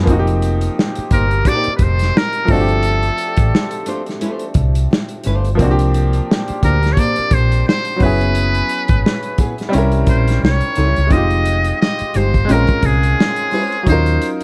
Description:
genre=R&B, neo-soul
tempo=87 BPM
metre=4/4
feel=swing 58% on 16ths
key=F minor from 11.1 s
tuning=A4 = 441 Hz
part: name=bright concert grand piano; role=accompaniment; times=0.0-14.4 s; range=F3 to Bb4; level=-23 LUFS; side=equal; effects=none
part: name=hollow-body short-scale fingered electric bass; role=bass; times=0.0-14.2 s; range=F1 to Eb2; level=-18 LUFS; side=equal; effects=none
part: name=warm soul drum kit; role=drums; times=0.1-14.4 s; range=hi-hat, kick drum, snare drum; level=-20 LUFS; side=equal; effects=none
part: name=trumpet with metal mute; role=melody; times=1.1-14.3 s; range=Ab4 to Eb5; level=-22 LUFS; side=equal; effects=none
part: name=nylon-string guitar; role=second line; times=1.1-13.8 s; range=G3 to C5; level=-26 LUFS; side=equal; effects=none
room=small room ambience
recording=dark, warm production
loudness=-16 LUFS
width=mono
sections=0.0-11.1 A section; 11.1-14.4 B section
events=none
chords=0.1 F9sus4; 2.5 G9sus4; 5.6 C9sus4; 8.0 Gb9sus4; 9.7 C7b9; 11.1 Fm9; 12.5 Bbm9; 13.9 Ebm9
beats=| 0.07 0.76 1.45 2.14 | 2.83 3.52 4.21 4.90 | 5.59 6.28 6.97 7.66 | 8.35 9.04 9.73 10.42 | 11.11 11.80 12.49 13.18 | 13.87

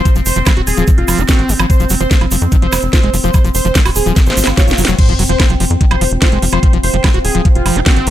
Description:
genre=psychedelic trance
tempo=146 BPM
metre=4/4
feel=straight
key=F phrygian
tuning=A4 = 438 Hz
part: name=wide unison lead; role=melody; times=0.0-8.0 s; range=F4 to Db5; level=-21 LUFS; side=equal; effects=phaser, sidechain pumping, ping-pong delay
part: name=overtone-sweeping drone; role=sustained chords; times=0.0-8.1 s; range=C4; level=-23 LUFS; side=left 1 dB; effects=chorus, built-in reverb, sidechain pumping
part: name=screaming distorted acid line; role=riff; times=0.1-8.1 s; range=Eb3 to Gb4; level=-20 LUFS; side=moving between left 4 dB and right 4 dB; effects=distortion, chorus, auto-pan, sidechain pumping, ping-pong delay
part: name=electronic kick drum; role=drums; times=0.1-7.9 s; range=none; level=-11 LUFS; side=equal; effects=studio reverb
part: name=garage drum kit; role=drums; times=0.1-8.1 s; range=crash cymbal, hi-hat, snare drum, woodblock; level=-18 LUFS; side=right 1 dB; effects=studio reverb
part: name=egg shaker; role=percussion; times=0.1-5.0 s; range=none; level=-24 LUFS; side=right 5 dB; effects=none
part: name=tight sequencer bass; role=bass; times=0.2-8.1 s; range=Eb1 to F2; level=-16 LUFS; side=equal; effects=none
part: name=swell and sub drop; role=sound effects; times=4.3-6.6 s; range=none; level=-24 LUFS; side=right 1 dB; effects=none
part: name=granular cloud pad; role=texture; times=5.8-8.1 s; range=F4 to F5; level=-28 LUFS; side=right 2 dB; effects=built-in reverb, sidechain pumping
room=little or no reverb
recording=none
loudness=-10 LUFS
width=side -12 dB against mid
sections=0.0-5.0 A section; 5.0-8.1 B section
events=drum fill 4.2-5.0; swell 4.3-5.0; drop 5.0-8.1; impact 5.0-6.6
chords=0.0 F5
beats=| 0.05 0.47 0.88 1.29 | 1.70 2.11 2.52 2.93 | 3.34 3.75 4.16 4.58 | 4.99 5.40 5.81 6.22 | 6.63 7.04 7.45 7.86

